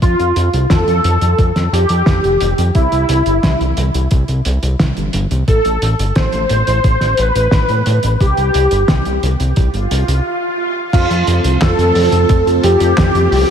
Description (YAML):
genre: synthwave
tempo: 88 BPM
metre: 4/4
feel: straight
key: unclear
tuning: A4 = 442 Hz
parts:
  - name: wide unison lead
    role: melody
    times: 0.0-13.5 s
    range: E4 to C5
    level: -16 LUFS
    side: equal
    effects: ensemble chorus, slapback echo, ping-pong delay
  - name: fat analog bass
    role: bass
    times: 0.0-13.4 s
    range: F1 to A2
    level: -16 LUFS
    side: equal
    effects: none
  - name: cloth-damped thuddy drum kit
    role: drums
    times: 0.0-13.5 s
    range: crash cymbal, handclaps, hi-hat, snare drum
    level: -20 LUFS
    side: right 1 dB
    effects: none
  - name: electronic kick drum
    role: drums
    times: 0.0-13.1 s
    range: none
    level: -15 LUFS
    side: equal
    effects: none
  - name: swell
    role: sound effects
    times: 9.8-10.9 s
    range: none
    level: -22 LUFS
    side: right 2 dB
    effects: slapback echo
  - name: FM electric piano with soft pad layer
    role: second line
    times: 10.9-13.5 s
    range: F4 to A4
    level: -21 LUFS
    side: right 1 dB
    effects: none
  - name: string machine, full ensemble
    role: sustained chords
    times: 10.9-13.5 s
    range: C4 to A4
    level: -19 LUFS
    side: equal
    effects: ensemble chorus, sidechain pumping
room: moderate lush hall reverb, RT60 3.0 s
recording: big arena sound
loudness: -12 LUFS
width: side -8 dB against mid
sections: 0.0-10.9 A section; 10.9-13.5 B section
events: swell 9.8-10.9; break 10.3-10.9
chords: 0.0 F; 2.8 C; 5.5 Am; 8.2 C5; 10.9 F